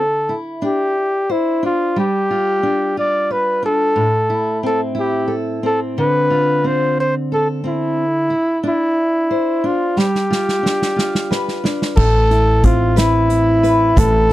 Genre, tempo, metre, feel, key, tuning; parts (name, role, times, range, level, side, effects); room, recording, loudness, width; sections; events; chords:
six-eight pop ballad; 60 BPM (dotted quarters); 6/8; straight; A minor; A4 = 440 Hz
warm flugelhorn; melody; 0.0-14.3 s; E4 to D5; -16 LUFS; equal
fingerpicked steel-string acoustic guitar; accompaniment; 0.0-14.3 s; A2 to C5; -21 LUFS; left 1 dB
unplugged drum kit; drums; 10.0-14.3 s; crash cymbal, hi-hat, kick drum, snare drum; -18 LUFS; right 1 dB
upright bass; bass; 12.0-14.3 s; A1; -16 LUFS; equal
light reverb; dry, close 1970s-style studio recording; -14 LUFS; side -15 dB against mid
0.0-12.0 A section; 12.0-14.3 B section
drum fill 10.0-12.0
0.0 Cadd9; 2.0 G7; 4.0 Am; 6.0 Dm7; 8.0 Cadd9; 10.0 G7; 12.0 Amadd9